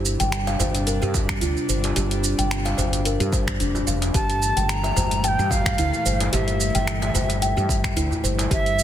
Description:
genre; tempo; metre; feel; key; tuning
organic downtempo; 110 BPM; 4/4; swing 55% on 16ths; G dorian; A4 = 436 Hz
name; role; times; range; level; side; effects
airy breathy pad; sustained chords; 0.0-8.8 s; Bb2 to D4; -30 LUFS; equal; chorus, sidechain pumping
woody fretless electric bass; bass; 0.0-8.8 s; F1 to G2; -24 LUFS; equal; sidechain pumping
deep house drum kit; drums; 0.1-8.8 s; finger snaps, hi-hat, shaker; -27 LUFS; right 1 dB; soft clipping on snare
kalimba; arpeggios; 0.2-8.7 s; D4 to G5; -27 LUFS; left 1 dB; ping-pong delay
darbuka; percussion; 0.5-8.5 s; none; -32 LUFS; right 2 dB; none
electronic kick drum; drums; 1.1-8.6 s; none; -25 LUFS; equal; none
breathy bright ney; melody; 4.1-8.8 s; E5 to Bb5; -26 LUFS; equal; ping-pong delay
room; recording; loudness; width
light reverb; dense, heavily limited modern master; -20 LUFS; side -11 dB against mid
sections
0.0-8.8 A section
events
none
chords
0.0 Csus2/G; 4.1 Gm69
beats
0.33 0.87 1.42 | 1.96 2.51 3.06 3.60 | 4.15 4.69 5.24 5.78 | 6.33 6.87 7.42 7.96 | 8.51

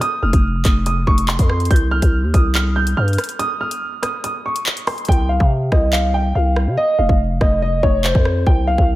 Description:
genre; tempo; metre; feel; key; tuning
hip hop, drill; 142 BPM; 4/4; half-time; C phrygian; A4 = 439 Hz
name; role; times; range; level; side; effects
dark baby grand piano; melody; 0.0-8.9 s; C5 to G6; -20 LUFS; right 1 dB; tape echo
drill drum kit; drums; 0.0-8.9 s; handclaps, hi-hat, kick drum, rim click; -17 LUFS; equal; none
growling 808-style bass; bass; 0.2-9.0 s; F1 to C3; -18 LUFS; equal; none
room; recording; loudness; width
moderate plate reverb, RT60 1.6 s, digital ambience; dreamy mix soaked in reverb; -15 LUFS; side -16 dB against mid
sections
0.0-5.1 A section; 5.1-9.0 B section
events
break 3.4-5.1; hi-hats muted 5.1-9.0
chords
0.0 F5; 1.7 C5; 3.4 N.C.; 5.1 Csus4; 6.8 F5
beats
| 0.01 0.44 0.86 1.28 | 1.71 2.13 2.55 2.97 | 3.40 3.82 4.24 4.66 | 5.09 5.51 5.93 6.35 | 6.78 7.20 7.62 8.04 | 8.47 8.89

